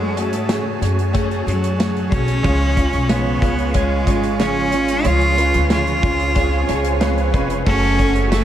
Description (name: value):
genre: piano-driven pop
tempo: 92 BPM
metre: 4/4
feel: straight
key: F# harmonic minor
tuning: A4 = 440 Hz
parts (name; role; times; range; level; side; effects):
- bright cello; melody; 0.0-8.4 s; F#3 to E#4; -21 LUFS; equal; diffuse ambient delay
- clear grand piano; accompaniment; 0.0-8.4 s; C#3 to A5; -23 LUFS; left 2 dB; ensemble chorus
- musette accordion; sustained chords; 0.0-8.4 s; A3 to C#6; -29 LUFS; right 4 dB; none
- upright bass; bass; 0.0-8.4 s; E#1 to G#2; -21 LUFS; equal; none
- modern studio drum kit; drums; 0.2-8.4 s; crash cymbal, hi-hat, kick drum, snare drum; -22 LUFS; equal; none
- direct-recorded clean electric guitar; riff; 2.4-8.4 s; F#2 to C#5; -25 LUFS; right 6 dB; none
- swell; sound effects; 6.1-7.7 s; none; -31 LUFS; right 6 dB; none
room: light reverb, small room ambience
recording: none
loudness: -15 LUFS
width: side -11 dB against mid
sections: 0.0-7.7 A section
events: swell 6.1-7.7; grand piano fill 6.4-7.7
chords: 0.0 F#madd9; 2.4 C#; 7.7 F#madd9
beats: 0.49 1.14 1.79 | 2.44 3.10 3.75 4.40 | 5.05 5.70 6.36 7.01 | 7.66 8.31